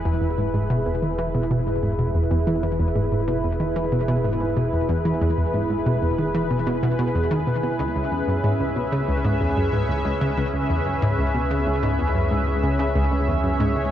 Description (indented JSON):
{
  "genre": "ambient, sequencer-driven space music",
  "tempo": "93 BPM",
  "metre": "4/4",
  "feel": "straight",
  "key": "E major",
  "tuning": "A4 = 440 Hz",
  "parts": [
    { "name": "sweeping resonant pad", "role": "sustained chords", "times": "0.0-13.9 s", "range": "C#4 to E5", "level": "-24 LUFS", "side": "right 1 dB", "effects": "chorus" },
    { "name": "fat analog bass", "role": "bass", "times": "0.0-13.9 s", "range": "E1 to C#2", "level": "-29 LUFS", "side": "equal", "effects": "none" },
    { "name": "bubbling stepped-filter texture", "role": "texture", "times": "0.0-13.9 s", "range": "B4", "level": "-44 LUFS", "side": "right 2 dB", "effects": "none" },
    { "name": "analog pluck", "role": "riff", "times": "0.1-13.8 s", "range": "C#2 to E3", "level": "-23 LUFS", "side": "equal", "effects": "chorus, ping-pong delay" }
  ],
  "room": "wet huge ambient reverb, RT60 8.7 s",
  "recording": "worn, warbling old tape, cassette tape, warbly pitch drift",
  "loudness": "-20 LUFS",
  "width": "side -11 dB against mid",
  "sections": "0.0-13.9 A section",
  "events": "filter sweep on synth arpeggio sound 0.0-13.9",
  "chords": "0.0 E; 7.8 C#m7",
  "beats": "| 0.05 0.70 1.34 1.99 | 2.63 3.28 3.92 4.57 | 5.21 5.86 6.50 7.15 | 7.80 8.44 9.09 9.73 | 10.38 11.02 11.67 12.31 | 12.96 13.60"
}